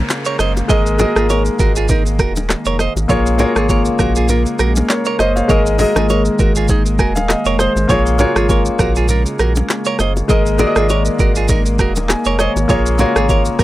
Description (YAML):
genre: afrobeats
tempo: 100 BPM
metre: 4/4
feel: swing 55% on 16ths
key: Bb minor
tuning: A4 = 444 Hz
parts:
  - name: warm concert grand piano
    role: accompaniment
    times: 0.0-13.6 s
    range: Ab3 to Ab5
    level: -18 LUFS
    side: left 2 dB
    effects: none
  - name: warm analog pad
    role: sustained chords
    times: 0.0-13.6 s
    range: Db3 to Bb3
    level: -23 LUFS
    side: left 1 dB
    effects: chorus
  - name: warm sub bass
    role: bass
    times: 0.0-13.6 s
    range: Eb1 to Bb1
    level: -18 LUFS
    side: equal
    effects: none
  - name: downlifter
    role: sound effects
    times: 0.0-3.1 s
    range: none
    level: -34 LUFS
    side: equal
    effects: none
  - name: afro-pop drum kit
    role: drums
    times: 0.1-13.6 s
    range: handclaps, hi-hat, kick drum, rim click, shaker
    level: -18 LUFS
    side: equal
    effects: none
  - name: bongos and congas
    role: percussion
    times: 0.1-13.5 s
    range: none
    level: -22 LUFS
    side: left 2 dB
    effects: none
  - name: direct-recorded clean electric guitar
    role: riff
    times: 0.3-13.6 s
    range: Eb4 to Eb5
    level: -20 LUFS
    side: right 6 dB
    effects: tape echo
room: little or no reverb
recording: dry, gritty hardware recording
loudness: -12 LUFS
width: side -15 dB against mid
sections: 0.0-13.6 A section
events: grand piano fill 6.7-7.9, 11.8-12.7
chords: 0.0 Bbm7; 0.7 Absus2; 3.1 Bbm7; 5.5 Absus2; 7.9 Bbm7; 10.3 Absus2; 12.7 Bbm7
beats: 0.09 | 0.69 1.29 1.89 2.49 | 3.09 3.69 4.29 4.89 | 5.49 6.09 6.69 7.29 | 7.89 8.49 9.09 9.69 | 10.29 10.89 11.49 12.09 | 12.69 13.29